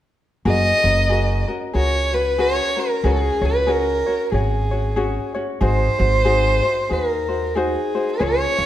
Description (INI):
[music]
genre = Hawaiian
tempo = 93 BPM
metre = 4/4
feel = swing 60% on 8ths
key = F# major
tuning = A4 = 440 Hz
[part]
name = warm violin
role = melody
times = 0.5-8.7 s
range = G#4 to D#5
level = -20 LUFS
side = equal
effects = none
[part]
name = ukulele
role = accompaniment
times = 0.5-8.7 s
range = C#4 to C#5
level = -24 LUFS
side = left 2 dB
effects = none
[part]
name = upright bass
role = bass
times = 0.5-8.7 s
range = F#1 to D#2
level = -21 LUFS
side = equal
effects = none
[sound]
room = moderate recital hall reverb, RT60 1.3 s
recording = none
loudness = -17 LUFS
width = side -12 dB against mid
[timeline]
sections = 0.5-8.7 A section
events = none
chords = 0.5 F#add9; 3.0 C#sus4; 5.6 G#7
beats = | 0.45 1.10 1.75 2.39 | 3.04 3.68 4.33 4.97 | 5.62 6.26 6.91 7.56 | 8.20